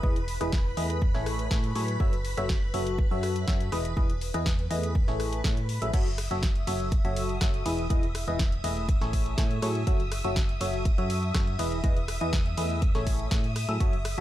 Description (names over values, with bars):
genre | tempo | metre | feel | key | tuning
piano house | 122 BPM | 4/4 | straight | F# dorian | A4 = 439 Hz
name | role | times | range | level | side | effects
string machine, violins | sustained chords | 0.0-14.2 s | B4 to D#6 | -38 LUFS | left 1 dB | ensemble chorus, sidechain pumping
barking FM electric piano | riff | 0.0-14.2 s | E3 to E5 | -32 LUFS | left 1 dB | phaser, sidechain pumping, dub echo
solid FM bass | bass | 0.0-14.2 s | E1 to A2 | -31 LUFS | equal | sidechain pumping
electronic kick drum | drums | 0.0-13.9 s | none | -26 LUFS | equal | none
house drum kit | drums | 0.2-14.2 s | crash cymbal, hi-hat, ride cymbal, rim click, snare drum | -36 LUFS | equal | none
room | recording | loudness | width
little or no reverb | none | -25 LUFS | side -13 dB against mid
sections
0.0-5.9 A section; 5.9-14.2 B section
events
drop 5.9-14.2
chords
0.0 Emaj7; 1.0 Amaj7; 2.0 F#m7; 3.7 Emaj7; 5.0 Amaj7; 5.9 F#m7; 7.7 Emaj7; 8.9 Amaj7; 9.9 F#m7; 11.6 Emaj7; 12.8 Amaj7